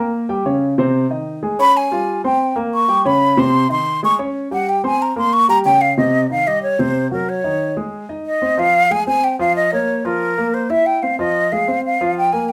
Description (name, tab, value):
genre	jazz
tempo	184 BPM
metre	4/4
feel	straight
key	unclear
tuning	A4 = 440 Hz
part	warm grand piano	accompaniment	0.0-12.5 s	C3 to Db6	-22 LUFS	equal	none
part	breathy concert flute	melody	1.6-12.5 s	Bb4 to Db6	-18 LUFS	equal	none
room	wet club reverb, RT60 0.5 s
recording	none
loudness	-17 LUFS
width	mono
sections	0.0-6.0 A section; 6.0-12.5 B section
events	flute solo 0.0-6.0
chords	0.1 Gdim; 0.8 Cm; 1.4 Db; 2.1 Gmadd11; 2.7 Gdim; 3.4 Cm; 4.0 Db5; 4.7 Gmadd11; 5.3 Bbm6; 6.0 Cm; 7.3 Ebm7; 7.9 Ab; 8.6 Fmadd11; 9.9 Bbm/F; 10.5 C7; 11.2 Fm7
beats	0.13 0.45 | 0.78 1.10 1.43 1.75 | 2.08 2.40 2.73 3.05 | 3.38 3.70 4.03 4.35 | 4.67 5.00 5.33 5.65 | 5.97 6.30 6.63 6.95 | 7.28 7.60 7.93 8.26 | 8.58 8.91 9.23 9.56 | 9.88 10.21 10.54 10.86 | 11.19 11.52 11.84 12.17 | 12.49